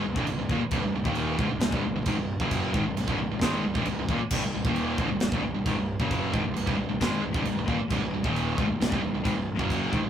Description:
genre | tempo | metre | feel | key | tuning
heavy metal | 133 BPM | 4/4 | straight | C minor | A4 = 441 Hz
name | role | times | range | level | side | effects
high-gain distorted guitar | riff | 0.0-10.1 s | C2 to Ab3 | -30 LUFS | right 5 dB | distortion
sludgy distorted guitar | riff | 0.0-10.1 s | C2 to Ab3 | -29 LUFS | left 4 dB | overdrive
fuzz fingered electric bass | bass | 0.0-10.1 s | C1 to Ab1 | -37 LUFS | equal | overdrive
modern studio drum kit | drums | 0.2-10.0 s | china cymbal, crash cymbal, kick drum, snare drum | -30 LUFS | equal | none
room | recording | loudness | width
light reverb | rough rehearsal-room recording | -25 LUFS | side -9 dB against mid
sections
0.0-10.1 A section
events
none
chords
0.0 Cm

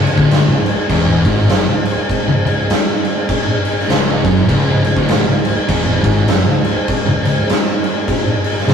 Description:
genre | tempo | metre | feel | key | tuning
stoner and doom metal | 100 BPM | 4/4 | swing 59% on 8ths | C# minor | A4 = 440 Hz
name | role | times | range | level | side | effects
tonewheel organ | sustained chords | 0.0-8.7 s | C#3 to D#4 | -25 LUFS | equal | chorus vibrato, fast rotary speaker
thick fuzz guitar | riff | 0.0-8.7 s | C#2 to G#2 | -18 LUFS | left 3 dB | distortion
thick fuzz guitar | riff | 0.0-8.7 s | C#2 to G#2 | -19 LUFS | right 2 dB | distortion
growling picked electric bass | bass | 0.0-8.7 s | C#1 to G#1 | -21 LUFS | equal | overdrive
oversized low-tuned drum kit | drums | 0.1-8.7 s | crash cymbal, kick drum, snare drum | -15 LUFS | equal | none
room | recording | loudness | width
light reverb | rough rehearsal-room recording | -12 LUFS | side -7 dB against mid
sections
0.0-8.7 A section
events
none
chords
0.0 C#m

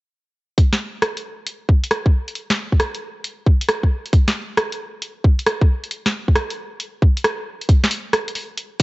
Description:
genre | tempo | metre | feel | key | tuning
UK garage | 135 BPM | 4/4 | swing 67% on 16ths | none | none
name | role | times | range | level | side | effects
electronic kick drum | drums | 0.6-8.8 s | none | -14 LUFS | equal | overdrive, cassette tape
punchy analog drum machine | drums | 0.6-8.8 s | hi-hat, rim click, snare drum | -21 LUFS | equal | cassette tape
room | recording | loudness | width
digital ambience | home recording on cassette, nothing above 8.0 kHz | -17 LUFS | side -21 dB against mid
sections
0.6-7.7 A section; 7.7-8.8 B section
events
break 7.2-7.7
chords
none

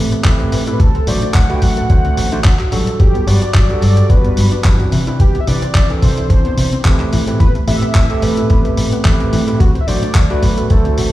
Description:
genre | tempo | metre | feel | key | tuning
nu-disco, nu disco | 109 BPM | 4/4 | swing 54% on 16ths | unclear | A4 = 440 Hz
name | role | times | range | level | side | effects
overdriven tine electric piano | accompaniment | 0.0-11.1 s | E3 to C5 | -20 LUFS | right 1 dB | sidechain pumping, digital delay
analog pluck | arpeggios | 0.0-11.1 s | E3 to A4 | -24 LUFS | left 3 dB | chorus, cassette tape, sidechain pumping, ping-pong delay
fingered electric bass | bass | 0.0-11.1 s | G1 to C3 | -16 LUFS | equal | tube saturation
dusty soul sampler-style drum kit | drums | 0.1-11.1 s | handclaps, hi-hat | -23 LUFS | equal | none
electronic kick drum | drums | 0.2-10.8 s | none | -11 LUFS | equal | none
wide unison lead | melody | 0.7-11.1 s | F#4 to G5 | -23 LUFS | equal | ping-pong delay
room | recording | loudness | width
little or no reverb | played on a big sound system in a bare room, large studio reverb | -11 LUFS | side -15 dB against mid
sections
0.0-11.1 A section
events
none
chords
0.0 Am9; 0.8 D7; 3.0 Gmaj7; 4.9 Cmaj9; 7.1 Am9; 9.6 D7

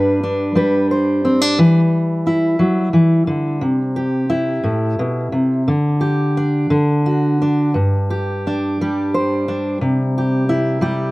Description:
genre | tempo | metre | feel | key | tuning
folk, solo fingerstyle acoustic guitar | 59 BPM (dotted quarters) | 6/8 | straight | G major | A4 = 439 Hz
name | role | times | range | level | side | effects
fingerpicked steel-string acoustic guitar | solo | 0.0-11.1 s | G2 to C5 | -15 LUFS | equal | slapback echo
room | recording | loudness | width
little or no reverb | recorded outdoors, with no room sound | -15 LUFS | side -20 dB against mid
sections
0.0-11.1 A section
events
none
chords
0.0 G; 1.6 Em; 3.6 C; 5.7 Dsus4; 6.7 D; 7.8 G5; 9.8 C

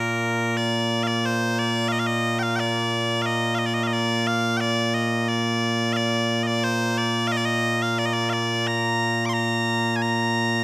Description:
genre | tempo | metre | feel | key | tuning
scottish traditional, Scottish pipe music | 89 BPM | 4/4 | straight | Bb major | A4 = 438 Hz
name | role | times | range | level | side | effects
loud bright bagpipes | solo | 0.0-10.6 s | Bb2 to D6 | -23 LUFS | equal | none
room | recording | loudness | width
moderate recital hall reverb, RT60 1.5 s | close, detailed microphones | -23 LUFS | mono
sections
0.6-10.6 A section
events
none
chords
none

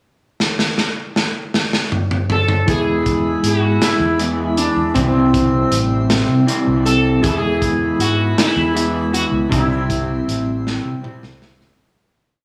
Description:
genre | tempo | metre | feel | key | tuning
psychedelic rock | 53 BPM (dotted quarters) | 6/8 | straight | unclear | A4 = 439 Hz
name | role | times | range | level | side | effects
crunchy breakbeat drum kit | drums | 0.4-11.8 s | hi-hat, kick drum, snare drum, toms | -22 LUFS | equal | none
sitar | melody | 2.3-10.3 s | B3 to A4 | -22 LUFS | equal | slapback echo
hand-pumped harmonium | sustained chords | 2.7-11.8 s | G4 to C6 | -31 LUFS | equal | none
electric guitar through a small old amp | riff | 2.7-11.8 s | C3 to E4 | -21 LUFS | equal | harmonic tremolo
fingered electric bass | bass | 2.7-11.7 s | A1 to C3 | -23 LUFS | equal | none
room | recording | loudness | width
small room reverb | studio reverb | -17 LUFS | mono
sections
0.4-2.7 pickup bar; 2.7-11.8 verse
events
drum fill 0.4-2.7, 10.7-11.8; fade-out 9.5-11.8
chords
0.4 N.C.; 2.7 E; 5.0 C; 7.2 E; 9.5 C

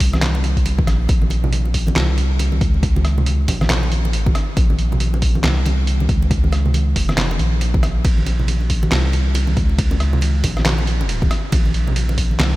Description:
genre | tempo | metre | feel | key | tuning
deep dubstep | 138 BPM | 4/4 | swing 60% on 16ths, half-time | Bb minor | A4 = 442 Hz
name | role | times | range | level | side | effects
soft dub sub bass | bass | 0.0-12.6 s | F1 to Db2 | -18 LUFS | equal | none
electronic kick drum | drums | 0.0-12.3 s | none | -18 LUFS | equal | studio reverb
trip hop sampler-style drum kit | drums | 0.0-12.5 s | handclaps, hi-hat, ride cymbal, rim click, snare drum | -23 LUFS | equal | studio reverb
congas | percussion | 0.1-12.5 s | none | -25 LUFS | right 1 dB | dub echo
room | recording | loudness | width
light reverb | none | -15 LUFS | side -18 dB against mid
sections
0.0-12.6 A section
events
none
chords
none

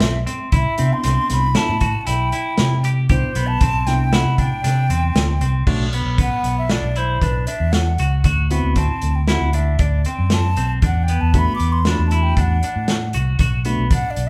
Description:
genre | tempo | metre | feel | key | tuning
progressive instrumental, band music in an uneven meter | 116 BPM | 5/4 | straight | B phrygian | A4 = 439 Hz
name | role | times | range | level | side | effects
wooden flute | melody | 0.0-14.3 s | B4 to D6 | -27 LUFS | equal | none
semi-hollow electric guitar | arpeggios | 0.0-14.3 s | B3 to G4 | -28 LUFS | equal | none
fingered electric bass | bass | 0.0-14.3 s | B1 to C3 | -21 LUFS | equal | none
vintage drum kit | drums | 0.0-14.3 s | crash cymbal, hi-hat, kick drum, snare drum | -23 LUFS | equal | none
tine electric piano | accompaniment | 0.8-13.8 s | A3 to F#4 | -30 LUFS | equal | none
room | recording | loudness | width
moderate large studio reverb, RT60 1.4 s | band playing live in one room | -18 LUFS | mono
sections
0.0-5.7 A section; 5.7-14.3 B section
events
none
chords
0.0 Am (rootless); 0.5 Cmaj7; 5.7 Bm; 8.2 D7; 10.8 E9sus4; 13.4 Bm7

